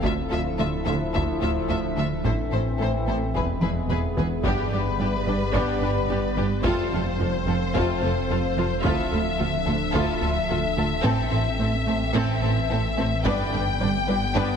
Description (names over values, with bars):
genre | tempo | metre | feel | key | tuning
cinematic, hybrid orchestral and electronic film score | 109 BPM | 4/4 | straight | unclear | A4 = 443 Hz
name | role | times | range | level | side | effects
rich symphonic violin section | melody | 0.0-14.6 s | B4 to G5 | -29 LUFS | left 6 dB | none
rich symphonic violin section | second line | 0.0-14.6 s | G4 to B4 | -34 LUFS | left 4 dB | none
warm symphonic viola section | accompaniment | 0.0-14.6 s | C4 to F4 | -31 LUFS | right 1 dB | none
warbly tape-like pad | sustained chords | 0.0-14.6 s | D3 to G5 | -30 LUFS | right 1 dB | chorus, built-in reverb
warm French horn section | sustained chords | 0.0-14.6 s | E3 to E4 | -35 LUFS | left 5 dB | none
rubbery square bass | riff | 0.0-14.5 s | D2 to A3 | -30 LUFS | right 2 dB | none
clear symphonic double bass section | bass | 0.0-14.4 s | E1 to D2 | -31 LUFS | right 4 dB | none
sub bass with octave | bass | 0.0-14.6 s | D1 to A1 | -31 LUFS | left 1 dB | none
warm symphonic cello section | bass | 0.0-14.4 s | D2 to A2 | -31 LUFS | right 3 dB | none
taiko ensemble | drums | 0.0-14.6 s | none | -31 LUFS | left 1 dB | none
room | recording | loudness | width
moderate scoring stage reverb, RT60 2.0 s | heavily compressed radio sound | -22 LUFS | side -7 dB against mid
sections
0.0-4.4 A section; 4.4-14.6 B section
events
drum fill 3.6-4.4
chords
0.0 Dmadd9; 2.2 Am; 3.3 E; 4.4 G; 6.6 F; 8.8 Dmadd9; 11.1 Am; 13.3 G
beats
| 0.04 0.59 1.14 1.69 | 2.24 2.79 3.34 3.89 | 4.45 5.00 5.54 6.10 | 6.65 7.20 7.75 8.30 | 8.85 9.40 9.95 10.50 | 11.05 11.60 12.15 12.70 | 13.25 13.80 14.35